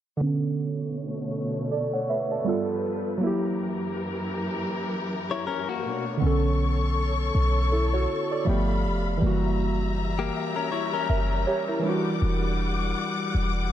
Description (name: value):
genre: R&B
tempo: 80 BPM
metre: 4/4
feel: swing 58% on 16ths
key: B minor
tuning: A4 = 440 Hz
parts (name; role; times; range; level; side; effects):
- warm analog keys; accompaniment; 0.2-13.7 s; D3 to F#5; -27 LUFS; right 2 dB; chorus, low-pass filter
- warm studio string section; sustained chords; 0.2-13.7 s; F#2 to D6; -31 LUFS; left 3 dB; low-pass filter
- direct-recorded clean electric guitar; arpeggios; 5.3-11.8 s; A#3 to C#5; -30 LUFS; left 8 dB; spring reverb, low-pass filter, ping-pong delay
- clean 808-style bass; bass; 6.2-13.7 s; E1 to B1; -25 LUFS; equal; none
room: light reverb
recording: dark, warm production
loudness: -24 LUFS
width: side -11 dB against mid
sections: 0.2-6.2 A section; 6.2-13.7 B section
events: filter sweep 0.2-6.2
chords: 0.2 Bm9; 2.5 G9; 3.2 F#7b9; 5.8 Bm9; 8.5 G9; 9.2 F#7b9; 11.8 Em9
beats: | 0.22 0.97 1.72 2.47 | 3.22 3.97 4.72 5.47 | 6.22 6.97 7.72 8.47 | 9.22 9.97 10.72 11.47 | 12.22 12.97 13.72